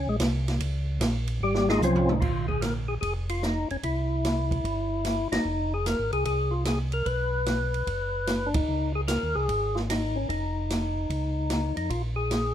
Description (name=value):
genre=soul jazz organ trio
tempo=149 BPM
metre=4/4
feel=swing 67% on 8ths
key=Bb dorian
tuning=A4 = 440 Hz
part: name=percussive tonewheel organ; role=melody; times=0.0-12.5 s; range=F3 to B4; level=-28 LUFS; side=left 2 dB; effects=slow rotary speaker, overdrive
part: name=mellow tonewheel organ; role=bass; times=0.0-12.5 s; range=F1 to F2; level=-29 LUFS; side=equal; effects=chorus vibrato, slow rotary speaker
part: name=open jazz drum kit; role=drums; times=0.2-12.4 s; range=crash cymbal, hi-hat, kick drum, ride cymbal, snare drum, toms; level=-31 LUFS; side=right 2 dB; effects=none
room=light reverb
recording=dark, warm production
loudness=-25 LUFS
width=side -10 dB against mid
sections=0.0-2.2 A section; 2.2-12.5 B section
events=tonewheel organ solo 0.0-2.2; drum fill 1.4-2.2; band accent 5.2, 8.5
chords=0.0 Bbm11; 2.2 Bb5; 3.8 C; 5.5 Fm; 7.1 B5; 8.7 Dbsus2; 10.3 Dbadd9/F; 11.9 Bb7(no3)